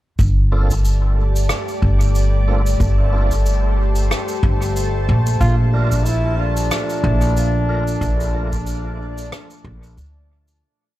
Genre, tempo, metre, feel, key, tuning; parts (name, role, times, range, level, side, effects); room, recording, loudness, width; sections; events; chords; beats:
ambient dub; 92 BPM; 4/4; swing 56% on 16ths; G minor; A4 = 437 Hz
soft additive organ-like pad; sustained chords; 0.8-10.6 s; Bb2 to D5; -27 LUFS; left 1 dB; ensemble chorus, built-in reverb
upright bass; bass; 0.2-10.6 s; G1 to D2; -17 LUFS; equal
cabasa and rim click; drums; 0.2-10.6 s; -29 LUFS; equal; dub echo
electronic kick drum; drums; 0.2-9.8 s; -23 LUFS; equal
bubbling stepped-filter texture; texture; 0.6-10.6 s; A3 to A5; -31 LUFS; left 2 dB; chorus, built-in reverb
tonewheel organ; stabs; 0.5-8.6 s; A3 to Bb4; -31 LUFS; right 3 dB; overdrive, chorus vibrato, slow rotary speaker, vintage 12-bit sampler grit, dub echo
clear trombone; melody; 5.4-9.9 s; D4 to F4; -24 LUFS; equal; dub echo
small room ambience; -15 LUFS; side -15 dB against mid
0.2-10.6 groove
fade-out 7.1-10.6
0.2 Gm11; 5.4 Bbmaj7
| 0.19 0.84 1.50 2.15 | 2.80 3.45 4.10 4.76 | 5.41 6.06 6.71 7.37 | 8.02 8.67 9.32 9.97